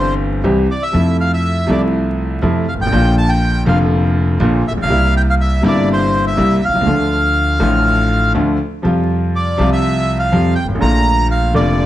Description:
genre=tango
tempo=122 BPM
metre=4/4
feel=rubato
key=F major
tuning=A4 = 440 Hz
part: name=bandoneon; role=melody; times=0.0-11.9 s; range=C5 to Bb5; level=-18 LUFS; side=equal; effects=none
part: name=clear concert grand piano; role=accompaniment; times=0.0-11.9 s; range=F1 to G4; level=-15 LUFS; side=left 1 dB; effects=none
part: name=upright bass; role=bass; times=0.0-11.9 s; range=F1 to F2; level=-18 LUFS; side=equal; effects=none
room=light reverb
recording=vinyl crackle, nothing above 10.7 kHz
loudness=-12 LUFS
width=side -13 dB against mid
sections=0.0-11.9 A section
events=none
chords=0.0 C; 0.9 Fmaj7; 2.9 Bb; 4.9 C7; 6.9 Dm; 8.8 Fsus2; 10.8 Bbmaj7

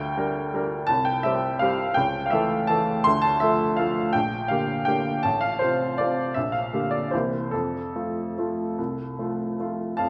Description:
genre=classical, piano waltz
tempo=140-174 BPM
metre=3/4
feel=rubato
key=F major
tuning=A4 = 440 Hz
part: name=clear upright piano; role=solo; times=0.0-10.1 s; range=A1 to C6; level=-25 LUFS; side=equal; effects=none
room=moderate concert hall reverb, RT60 2.4 s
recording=none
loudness=-25 LUFS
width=mono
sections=0.0-10.0 A section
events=none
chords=0.0 Gm; 0.9 C; 2.0 A/C#; 3.1 Dm; 4.1 Gm/Bb; 5.2 F/A; 6.4 Gm7/Bb; 7.1 C7; 7.5 F

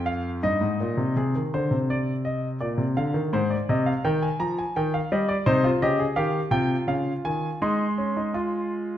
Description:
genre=classical, baroque-style 3-part fugue for grand piano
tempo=83 BPM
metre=3/4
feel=straight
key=Ab major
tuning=A4 = 441 Hz
part: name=clear grand piano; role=solo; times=0.0-9.0 s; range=F2 to C6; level=-22 LUFS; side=equal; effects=none
room=wet recital hall reverb, RT60 1.5 s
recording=none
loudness=-22 LUFS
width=side -11 dB against mid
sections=0.0-1.2 A section; 1.2-9.0 B section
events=none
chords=0.4 Eb/G; 1.2 Ab/C; 2.6 Bbadd9; 3.3 Fm/Ab; 4.8 Eb; 5.5 Ab/C; 6.9 Db; 7.6 Ebsus4/Ab

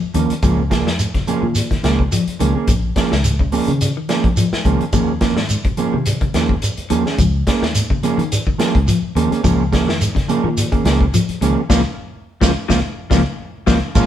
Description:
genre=afrobeat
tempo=106 BPM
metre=4/4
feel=swing 54% on 16ths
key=unclear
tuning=A4 = 440 Hz
part: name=clean electric guitar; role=arpeggios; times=0.0-13.8 s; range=Bb2 to F3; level=-23 LUFS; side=left 5 dB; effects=tremolo
part: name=fingered electric bass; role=bass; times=0.0-14.1 s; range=Bb1 to Eb3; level=-21 LUFS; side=equal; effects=none
part: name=mellow electric guitar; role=stabs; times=0.1-14.1 s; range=F3 to Ab4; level=-19 LUFS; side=right 5 dB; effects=none
part: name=vintage drum kit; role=drums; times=0.1-14.1 s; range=crash cymbal, hi-hat, kick drum, snare drum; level=-20 LUFS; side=left 1 dB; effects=none
part: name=shekere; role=percussion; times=0.1-14.1 s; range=none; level=-22 LUFS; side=right 1 dB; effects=none
part: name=barky reed electric piano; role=accompaniment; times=14.0-14.1 s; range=Ab3 to F4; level=-19 LUFS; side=left 2 dB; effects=overdrive, fast tremolo
room=moderate stone room reverb, RT60 1.0 s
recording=band playing live in one room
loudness=-15 LUFS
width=side -10 dB against mid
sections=0.0-14.0 A section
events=band accent 11.7-14.0; drum fill 13.4-14.0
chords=0.4 Db6; 4.9 Eb9sus4; 9.4 Db6

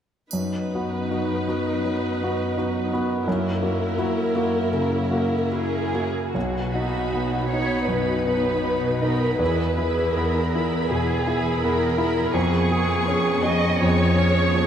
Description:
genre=classical, romantic movement for piano and orchestra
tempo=80 BPM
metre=4/4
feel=uneven beats, rubato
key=B major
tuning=A4 = 440 Hz
part: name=clear concert grand piano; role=melody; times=0.3-14.7 s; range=B1 to G#4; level=-24 LUFS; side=left 1 dB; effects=none
part: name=warm symphonic viola section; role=accompaniment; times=0.3-14.7 s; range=B3 to B4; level=-29 LUFS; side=right 1 dB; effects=none
part: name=mellow French horn section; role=sustained chords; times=0.3-6.0 s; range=A#3 to E4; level=-31 LUFS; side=right 1 dB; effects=none
part: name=warm symphonic cello section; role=bass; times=0.3-14.7 s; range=E2 to B2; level=-28 LUFS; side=equal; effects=none
part: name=triangle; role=percussion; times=0.3-1.8 s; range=none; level=-38 LUFS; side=right 6 dB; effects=none
part: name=dark symphonic violin section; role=second line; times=5.5-14.7 s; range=F#4 to D#5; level=-25 LUFS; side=equal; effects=none
part: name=rich symphonic violin section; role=melody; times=6.7-14.7 s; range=B5 to C#6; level=-32 LUFS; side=right 1 dB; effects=none
room=wet cathedral reverb, RT60 7.1 s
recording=in a vast, echoing space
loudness=-20 LUFS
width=side -9 dB against mid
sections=0.3-6.3 A section; 6.3-14.7 B section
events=none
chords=0.3 B/F#; 3.3 F#7; 6.3 B; 9.4 E; 12.3 C#7/E#

